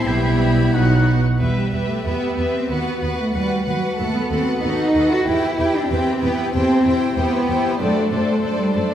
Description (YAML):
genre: quick classical-period movement for symphony orchestra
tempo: 94 BPM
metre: 2/4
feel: straight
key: E minor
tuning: A4 = 439 Hz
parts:
  - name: rich chamber violin section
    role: melody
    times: 0.0-8.9 s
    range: F#4 to B5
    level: -33 LUFS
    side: left 4 dB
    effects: none
  - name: clear clarinet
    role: second line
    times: 0.0-1.1 s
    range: D#4 to E4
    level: -30 LUFS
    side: left 1 dB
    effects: none
  - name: rich chamber violin section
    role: second line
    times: 0.0-8.9 s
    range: F#4 to G5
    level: -25 LUFS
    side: left 2 dB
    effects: none
  - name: silver concert flute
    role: second line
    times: 0.0-1.1 s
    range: F#6 to G6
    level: -28 LUFS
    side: left 2 dB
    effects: none
  - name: rich studio viola section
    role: accompaniment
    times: 0.0-8.9 s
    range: B3 to B4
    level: -26 LUFS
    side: equal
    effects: none
  - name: dark French horn section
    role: sustained chords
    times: 0.0-1.1 s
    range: F#3 to E4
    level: -24 LUFS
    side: left 2 dB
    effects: none
  - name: rich chamber double bass section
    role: bass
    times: 0.0-8.8 s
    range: B1 to F#2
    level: -22 LUFS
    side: right 2 dB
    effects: none
  - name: rich chamber cello section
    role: bass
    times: 0.1-8.9 s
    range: F#3 to F#4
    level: -21 LUFS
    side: right 1 dB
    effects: none
room: wet concert hall reverb, RT60 1.9 s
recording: none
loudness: -17 LUFS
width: side -10 dB against mid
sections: 0.0-1.4 A section; 1.4-8.9 A section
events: none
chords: 0.1 Em/B; 0.7 B; 1.4 Em; 2.7 B/D#; 4.0 B7/D#; 5.3 Em; 6.5 C/E; 7.8 D7/F#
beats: | 0.06 0.73 | 1.40 2.05 | 2.70 3.35 | 3.99 4.63 | 5.27 5.90 | 6.54 7.17 | 7.80 8.44